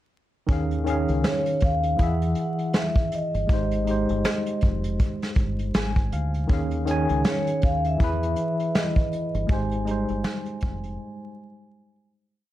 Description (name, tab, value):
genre	lo-fi hip hop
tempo	80 BPM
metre	4/4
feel	swing 60% on 16ths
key	Ab major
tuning	A4 = 440 Hz
part	tine electric piano	accompaniment	0.5-12.5 s	Eb3 to Ab5	-27 LUFS	equal	overdrive, medium stereo tremolo, low-pass filter
part	deep dub fingered electric bass	bass	0.5-11.0 s	F1 to E2	-27 LUFS	equal	none
part	vintage brush drum kit	drums	0.5-11.0 s	hi-hat, kick drum, snare drum	-24 LUFS	equal	none
part	vibraphone with soft mallets	melody	1.3-12.1 s	Db5 to Ab5	-29 LUFS	equal	low-pass filter
room	moderate studio reverb, RT60 0.6 s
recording	vinyl crackle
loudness	-22 LUFS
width	side -14 dB against mid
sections	0.5-12.5 A section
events	tine electric piano fill 5.4-6.5; fade-out 9.5-12.5; break 11.0-12.5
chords	0.5 Eb9sus4; 2.0 E; 3.5 Abmaj7; 6.5 Eb9sus4; 8.0 Emaj7; 9.5 Abmaj7